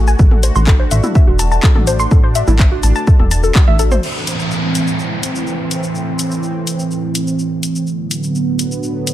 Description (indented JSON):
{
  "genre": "melodic techno",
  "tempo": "125 BPM",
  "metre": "4/4",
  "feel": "straight",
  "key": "A dorian",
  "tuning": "A4 = 442 Hz",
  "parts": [
    { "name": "sweeping resonant pad", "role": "sustained chords", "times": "0.0-9.1 s", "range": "A2 to G#4", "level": "-20 LUFS", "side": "right 2 dB", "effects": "chorus, sidechain pumping" },
    { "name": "warbly dusty pluck", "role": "arpeggios", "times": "0.0-4.0 s", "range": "E4 to C6", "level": "-20 LUFS", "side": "left 2 dB", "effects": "chorus, vintage 12-bit sampler grit, sidechain pumping, dub echo" },
    { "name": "plucky analog bass", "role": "bass", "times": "0.0-4.0 s", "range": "E1 to A1", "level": "-14 LUFS", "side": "equal", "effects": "sidechain pumping" },
    { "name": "house drum kit", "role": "drums", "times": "0.1-9.1 s", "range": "crash cymbal, handclaps, hi-hat, shaker, toms", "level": "-22 LUFS", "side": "left 2 dB", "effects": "overdrive, sidechain pumping on hats, studio reverb, sidechain pumping on perc, sidechain pumping on toms, sidechain pumping on cymbals" },
    { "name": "electronic kick drum", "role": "drums", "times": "0.2-3.7 s", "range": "none", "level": "-10 LUFS", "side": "equal", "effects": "overdrive, studio reverb" },
    { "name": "downlifter", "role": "sound effects", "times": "4.0-7.9 s", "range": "none", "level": "-25 LUFS", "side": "right 1 dB", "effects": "none" }
  ],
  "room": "digital ambience",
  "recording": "none",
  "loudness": "-12 LUFS",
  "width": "side -13 dB against mid",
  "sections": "0.0-4.0 A section; 4.0-9.1 B section",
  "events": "none",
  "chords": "0.2 D; 4.0 Am; 7.9 Bm/A"
}